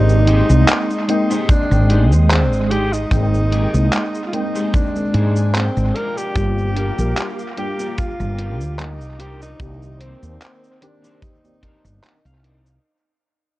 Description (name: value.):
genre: vaporwave.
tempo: 74 BPM.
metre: 4/4.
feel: swing 54% on 16ths.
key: unclear.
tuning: A4 = 440 Hz.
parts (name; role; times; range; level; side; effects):
breathy tenor saxophone; melody; 0.0-12.4 s; C4 to Bb4; -23 LUFS; equal; tape echo.
mellow FM electric piano; accompaniment; 0.0-12.2 s; Eb3 to G5; -25 LUFS; left 1 dB; tremolo, ensemble chorus, dub echo.
soft string machine; sustained chords; 0.0-12.8 s; Ab3 to Eb6; -28 LUFS; right 1 dB; phaser, ensemble chorus.
woody fretless electric bass; bass; 0.0-12.8 s; G1 to Ab2; -16 LUFS; equal; none.
detuned 8-bit digital drum machine; drums; 0.1-12.8 s; cabasa, handclaps, hi-hat; -22 LUFS; equal; dub echo.
electric guitar at the edge of break-up; riff; 0.3-12.8 s; D4 to Ab5; -29 LUFS; left 1 dB; ensemble chorus, dub echo.
kick drum; drums; 1.5-11.8 s; none; -19 LUFS; equal; none.
room: small room ambience.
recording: echo-heavy mix, cassette tape.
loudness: -15 LUFS.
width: side -17 dB against mid.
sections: 0.0-12.8 A section.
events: fade-out 0.0-12.8; clean electric guitar fill 4.7-6.4, 11.2-12.8.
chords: 0.0 Abmaj7; 6.0 Gm7; 9.2 Cm9.